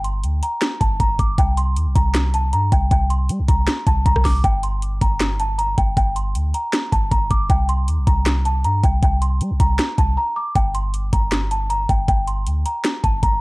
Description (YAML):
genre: hip hop, trap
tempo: 157 BPM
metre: 4/4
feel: half-time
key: G minor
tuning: A4 = 442 Hz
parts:
  - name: small celesta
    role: melody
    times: 0.0-13.4 s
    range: G5 to D6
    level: -23 LUFS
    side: equal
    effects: low-pass filter, analog delay
  - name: warm 808-style bass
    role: bass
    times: 0.0-13.4 s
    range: G1 to G3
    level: -19 LUFS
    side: equal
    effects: none
  - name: trap drum kit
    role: drums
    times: 0.0-13.3 s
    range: finger snaps, hi-hat, kick drum, rim click, snare drum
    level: -20 LUFS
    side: equal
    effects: none
room: digital ambience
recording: dry, gritty hardware recording, cassette tape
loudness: -16 LUFS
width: side -24 dB against mid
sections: 0.0-13.4 A section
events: break 10.2-10.6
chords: 0.0 Gm; 1.4 C7(no3); 4.4 Gm; 7.5 C7(no3); 10.6 Gm